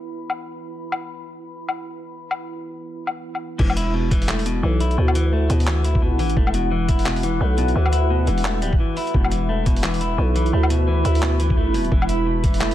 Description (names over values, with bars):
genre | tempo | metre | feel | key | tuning
half-time drum and bass | 173 BPM | 4/4 | swing 60% on 16ths, half-time | unclear | A4 = 441 Hz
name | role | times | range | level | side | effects
deep dark ambient pad | sustained chords | 0.0-12.7 s | E4 to B5 | -27 LUFS | right 2 dB | chorus, built-in reverb, sidechain pumping
boom bap sampler-style drum kit | drums | 0.3-12.7 s | crash cymbal, handclaps, hi-hat, woodblock | -28 LUFS | left 2 dB | low-pass filter on perc, small room ambience, low-pass filter on cymbals, low-pass filter on hats, low-pass filter on snare
clean electric guitar | arpeggios | 3.6-12.7 s | B2 to E4 | -26 LUFS | left 4 dB | ping-pong delay
growling 808-style bass | bass | 3.6-12.7 s | E1 to D2 | -20 LUFS | equal | none
electronic kick drum | drums | 3.6-12.5 s | none | -20 LUFS | equal | small room ambience
room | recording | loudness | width
light reverb | none | -18 LUFS | side -12 dB against mid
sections
0.0-3.6 A section; 3.6-12.7 B section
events
drop 3.6-12.7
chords
0.0 E5; 3.6 Esus2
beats
0.12 0.47 | 0.82 1.17 1.51 1.86 | 2.21 2.55 2.90 3.25 | 3.59 3.94 4.29 4.63 | 4.98 5.33 5.67 6.02 | 6.37 6.71 7.06 7.41 | 7.75 8.10 8.45 8.79 | 9.14 9.49 9.84 10.18 | 10.53 10.88 11.22 11.57 | 11.92 12.26 12.61